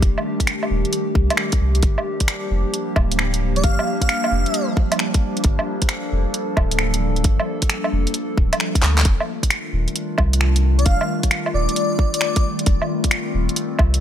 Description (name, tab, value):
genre	future garage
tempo	133 BPM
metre	4/4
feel	swing 67% on 16ths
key	unclear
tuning	A4 = 440 Hz
part	warbly tape-like pad	sustained chords	0.0-14.0 s	Eb3 to A4	-24 LUFS	left 1 dB	chorus, built-in reverb, phaser, sidechain pumping
part	warm sub bass	bass	0.0-14.0 s	D1 to D2	-20 LUFS	equal	sidechain pumping
part	electronic kick drum	drums	0.0-13.9 s	none	-18 LUFS	equal	overdrive
part	garage drum kit	drums	0.0-14.0 s	finger snaps, handclaps, hi-hat, woodblock	-23 LUFS	right 1 dB	overdrive
part	airy dreamy lead	melody	3.6-4.6, 10.8-12.4 s	D5 to F5	-25 LUFS	left 1 dB	chorus, tape echo
room	light reverb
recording	none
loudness	-17 LUFS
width	side -10 dB against mid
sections	0.0-9.1 A section; 9.1-14.0 A section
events	drum fill 8.8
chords	0.0 F13 (rootless); 1.8 Gm7; 9.1 F13